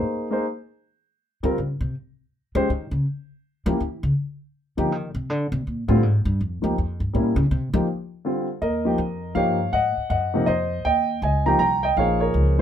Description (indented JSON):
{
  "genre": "jazz piano trio",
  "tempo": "162 BPM",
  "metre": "3/4",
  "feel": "swing 63% on 8ths",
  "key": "Eb mixolydian",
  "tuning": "A4 = 440 Hz",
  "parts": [
    { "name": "warm concert grand piano", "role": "melody", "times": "0.0-12.6 s", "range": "C3 to Bb5", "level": "-22 LUFS", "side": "equal", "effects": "none" },
    { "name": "upright bass", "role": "bass", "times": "0.0-12.6 s", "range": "Bb1 to F3", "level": "-23 LUFS", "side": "equal", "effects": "none" }
  ],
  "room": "moderate small room reverb, RT60 0.5 s",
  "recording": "minimal, uncompressed stereo recording",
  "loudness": "-21 LUFS",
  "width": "side -9 dB against mid",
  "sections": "0.0-8.6 A section; 8.6-12.6 B section",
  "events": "upright bass solo 0.0-8.6",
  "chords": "0.0 Ab; 0.8 Eb7(no3); 3.0 N.C.; 3.8 Dbm; 4.2 N.C.; 5.3 Bb7; 6.4 Eb; 7.1 Bbdim7; 7.5 F5; 8.2 Dmadd11; 8.6 Eb7; 9.7 Ab7; 10.9 Eb7; 12.0 Bbm7",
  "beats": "0.09 0.46 | 0.83 1.20 1.57 | 1.94 2.31 2.68 | 3.05 3.42 3.79 | 4.16 4.53 4.90 | 5.28 5.65 6.02 | 6.39 6.76 7.13 | 7.50 7.88 8.25 | 8.62 8.99 9.36 | 9.74 10.11 10.48 | 10.86 11.23 11.60 | 11.97 12.35"
}